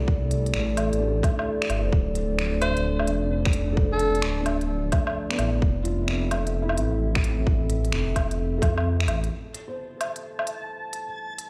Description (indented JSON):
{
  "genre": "future garage",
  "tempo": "130 BPM",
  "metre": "4/4",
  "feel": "swing 66% on 16ths",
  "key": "A minor",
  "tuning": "A4 = 435 Hz",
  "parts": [
    { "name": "felt-muted upright piano", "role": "accompaniment", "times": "0.0-11.5 s", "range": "G3 to C5", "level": "-36 LUFS", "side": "equal", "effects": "sidechain pumping, tape echo" },
    { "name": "dark analog pad", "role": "sustained chords", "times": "0.0-11.5 s", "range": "F3 to E5", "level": "-33 LUFS", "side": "equal", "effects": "chorus, sidechain pumping" },
    { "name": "swelling detuned saw bass", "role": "bass", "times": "0.0-9.3 s", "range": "D1 to F2", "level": "-28 LUFS", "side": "equal", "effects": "sidechain pumping" },
    { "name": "electronic kick drum", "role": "drums", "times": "0.1-8.7 s", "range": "none", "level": "-25 LUFS", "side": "equal", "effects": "overdrive" },
    { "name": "organic electronic drum kit", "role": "drums", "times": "0.3-11.5 s", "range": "finger snaps, hi-hat, woodblock", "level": "-32 LUFS", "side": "equal", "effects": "overdrive" },
    { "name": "clear alto saxophone", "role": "melody", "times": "2.6-4.2 s", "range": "A4 to C5", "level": "-32 LUFS", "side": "equal", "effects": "tape echo" },
    { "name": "backwards swelling texture", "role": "texture", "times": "10.1-11.5 s", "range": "A5", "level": "-39 LUFS", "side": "equal", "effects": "built-in reverb" }
  ],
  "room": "light reverb",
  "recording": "played on a big sound system in a bare room, large studio reverb",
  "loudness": "-25 LUFS",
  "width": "mono",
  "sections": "0.0-9.3 A section; 9.3-11.5 B section",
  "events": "kick drops out 8.9-9.3; filter sweep on analog synth pad 9.3-11.5",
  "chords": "0.0 Am7; 1.9 Dm7; 5.6 Fmaj7; 9.3 Am7"
}